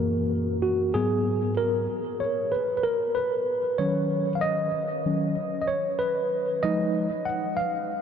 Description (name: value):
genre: hip hop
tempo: 95 BPM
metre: 4/4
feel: swing 57% on 16ths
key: G# dorian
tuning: A4 = 441 Hz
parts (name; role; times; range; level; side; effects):
- mellow tine electric piano; solo; 0.0-8.0 s; F#2 to F#5; -24 LUFS; equal; medium stereo tremolo, diffuse ambient delay
room: wet huge ambient reverb, RT60 8.7 s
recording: dreamy mix soaked in reverb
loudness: -24 LUFS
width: side -8 dB against mid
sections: 0.0-8.0 A section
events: tine electric piano solo 0.0-8.0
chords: 0.0 F#7; 1.0 G#m7; 3.8 D#m7; 6.3 Fm7b5